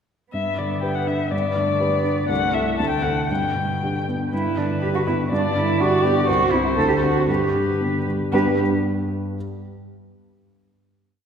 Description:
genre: quick classical-period movement for piano trio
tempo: 113-124 BPM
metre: 2/4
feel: rubato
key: G major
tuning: A4 = 440 Hz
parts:
  - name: muted violin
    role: melody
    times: 0.3-8.6 s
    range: B4 to A5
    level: -25 LUFS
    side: left 4 dB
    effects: none
  - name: muted cello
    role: second line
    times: 0.3-8.6 s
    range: B2 to A4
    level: -24 LUFS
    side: right 3 dB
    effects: none
  - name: dark baby grand piano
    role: accompaniment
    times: 0.3-9.4 s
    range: C2 to B4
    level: -22 LUFS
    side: equal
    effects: none
room: wet concert hall reverb, RT60 1.9 s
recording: recorded in a church or concert hall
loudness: -19 LUFS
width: side -7 dB against mid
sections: 0.3-4.3 A section; 4.3-8.3 A section; 8.3-9.3 final chord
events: none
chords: 0.3 G; 2.3 Am/C; 2.8 D7; 3.3 G; 6.3 C; 6.8 D7; 7.3 G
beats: | 0.34 0.83 | 1.32 1.81 | 2.30 2.79 | 3.29 3.81 | 4.32 4.82 | 5.30 5.79 | 6.28 6.76 | 7.28 7.81 | 8.33 8.84

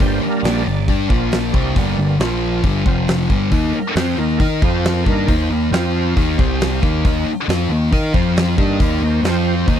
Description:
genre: blues rock power trio and southern rock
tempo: 136 BPM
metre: 4/4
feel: straight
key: unclear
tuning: A4 = 440 Hz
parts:
  - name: overdriven tonewheel organ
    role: sustained chords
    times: 0.0-9.8 s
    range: C3 to F5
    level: -25 LUFS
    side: right 5 dB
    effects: slow rotary speaker, chorus vibrato
  - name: thick fuzz guitar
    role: riff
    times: 0.0-9.8 s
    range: F2 to Eb5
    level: -19 LUFS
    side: left 1 dB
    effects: distortion
  - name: growling picked electric bass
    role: bass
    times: 0.0-9.8 s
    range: F1 to Eb3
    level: -21 LUFS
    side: equal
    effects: overdrive
  - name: huge arena drum kit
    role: drums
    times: 0.0-9.8 s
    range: hi-hat, kick drum, snare drum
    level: -19 LUFS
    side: equal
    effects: none
room: little or no reverb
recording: dry, close 1970s-style studio recording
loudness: -15 LUFS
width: side -9 dB against mid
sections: 0.0-9.8 A section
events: tonewheel organ solo 0.0-9.8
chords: 0.0 Gm; 1.1 Bb5; 1.5 Gm; 2.2 Bb5; 2.6 G5; 2.9 F5; 3.3 G5; 3.5 Eb5; 4.6 F5; 5.1 Eb5; 5.7 F5; 6.2 Eb5; 6.4 C5; 6.8 Eb5; 8.1 F5; 8.6 Eb5; 9.2 F5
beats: | 0.01 0.45 0.89 1.32 | 1.76 2.21 2.65 3.08 | 3.52 3.96 4.40 4.84 | 5.28 5.72 6.16 6.60 | 7.04 7.48 7.92 8.36 | 8.80 9.24 9.68

